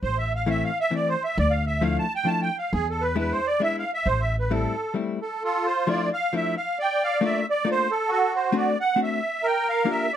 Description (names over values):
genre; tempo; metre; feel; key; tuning
musette waltz; 134 BPM; 3/4; straight; A minor, D minor from 5.4 s; A4 = 439 Hz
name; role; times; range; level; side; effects
musette accordion; melody; 0.0-10.2 s; F4 to A5; -23 LUFS; right 2 dB; none
upright bass; bass; 0.0-4.6 s; A1 to E2; -26 LUFS; equal; none
hollow-body jazz guitar; accompaniment; 0.5-10.1 s; E3 to G4; -26 LUFS; left 5 dB; none
room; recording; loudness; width
light reverb; none; -22 LUFS; side -10 dB against mid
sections
0.0-5.4 A section; 5.4-10.2 B section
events
none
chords
0.0 Am; 1.4 Dmadd9; 2.7 E7; 4.1 Am7; 5.4 Dmadd9; 6.8 Bbmaj7; 8.1 D7; 9.4 Gm7